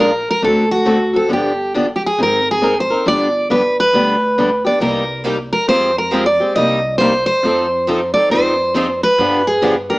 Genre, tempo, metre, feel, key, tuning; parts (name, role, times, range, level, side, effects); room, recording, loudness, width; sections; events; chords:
acoustic string swing (jazz manouche); 137 BPM; 4/4; swing 62% on 8ths; A4 = 438 Hz
picked steel-string acoustic guitar; melody; 0.0-10.0 s; F#4 to Eb5; -15 LUFS; equal
picked steel-string acoustic guitar; accompaniment; 0.0-10.0 s; C3 to Bb4; -18 LUFS; left 1 dB
upright bass; bass; 0.0-9.9 s; G1 to G2; -26 LUFS; equal
picked steel-string acoustic guitar; accompaniment; 4.8-9.7 s; C3 to C5; -22 LUFS; right 2 dB
light reverb; small speaker sound; -13 LUFS; side -21 dB against mid
0.0-10.0 A section
0.4 D7; 1.3 G7; 2.2 Abadd9; 3.0 G; 4.8 Cm7; 5.7 Fmadd9; 6.6 Cm7; 7.4 F7; 8.3 Fm7; 9.2 G7